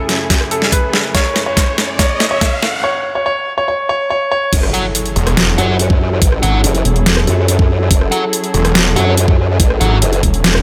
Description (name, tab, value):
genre	heavy wobble dubstep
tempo	142 BPM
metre	4/4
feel	half-time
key	F# minor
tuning	A4 = 440 Hz
part	clear grand piano	melody	0.0-4.5 s	A4 to C#5	-20 LUFS	equal	low-pass filter, dub echo
part	muted chamber string section	sustained chords	0.0-10.6 s	F#2 to A4	-24 LUFS	equal	sidechain pumping, low-pass filter
part	riser and impact	sound effects	0.0-6.2 s	none	-26 LUFS	equal	none
part	dubstep drum kit	drums	0.1-10.6 s	crash cymbal, hi-hat, rim click, snare drum	-18 LUFS	equal	overdrive, high-pass filter on hats, high-pass filter on snare, high-pass filter on toms, high-pass filter on cymbals
part	electronic kick drum	drums	0.3-10.3 s	none	-16 LUFS	equal	overdrive
part	formant-sweep wobble bass	bass	4.5-10.2 s	F#1 to F#2	-17 LUFS	equal	chorus, overdrive
part	sludgy distorted guitar	stabs	4.7-10.0 s	F#4 to F#5	-24 LUFS	equal	overdrive, dub echo
part	snarling distorted saw bass	bass	5.2-10.6 s	E1 to G#1	-17 LUFS	equal	distortion, overdrive
room	light reverb, digital ambience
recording	none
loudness	-14 LUFS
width	mono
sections	0.0-4.5 A section; 4.5-10.6 B section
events	build-up 0.0-4.5; drum fill 0.0-2.8; riser 0.0-2.8; break 2.8-4.5; drop 4.5-10.6; impact 4.5-6.2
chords	0.0 F#m7